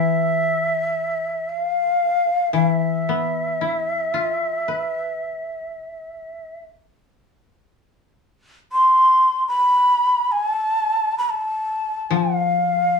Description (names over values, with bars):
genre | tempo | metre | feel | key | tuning
japanese traditional, Japanese chamber music | free time | none | none | E miyako bushi | A4 = 440 Hz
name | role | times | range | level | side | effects
breathy shakuhachi | melody | 0.0-13.0 s | E5 to C6 | -19 LUFS | equal | none
koto | accompaniment | 0.0-13.0 s | E3 to B4 | -23 LUFS | left 9 dB | none
room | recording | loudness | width
light reverb | studio ambience | -18 LUFS | side -5 dB against mid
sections
0.0-13.0 A section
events
none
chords
none